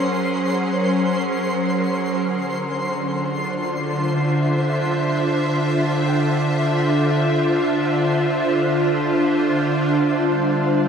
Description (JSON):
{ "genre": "ambient", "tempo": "free time", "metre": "none", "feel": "none", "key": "unclear", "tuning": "A4 = 440 Hz", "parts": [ { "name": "evolving wavetable pad", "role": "sustained chords", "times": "0.0-10.9 s", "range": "D3 to Gb5", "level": "-18 LUFS", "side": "equal", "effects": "ensemble chorus, built-in reverb" }, { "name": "twinkling granular texture", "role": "texture", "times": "0.0-10.0 s", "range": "C5 to C6", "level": "-28 LUFS", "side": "right 1 dB", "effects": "built-in reverb" }, { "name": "Celtic harp", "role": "arpeggios", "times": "6.1-10.9 s", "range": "none", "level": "barely audible", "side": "none", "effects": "none" } ], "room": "wet shimmer reverb, RT60 6.7 s", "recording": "dark, warm production", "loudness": "-18 LUFS", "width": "side -7 dB against mid", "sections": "0.0-10.0 A section", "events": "none", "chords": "0.0 Gbadd9; 2.1 Dm7; 10.0 G7sus4" }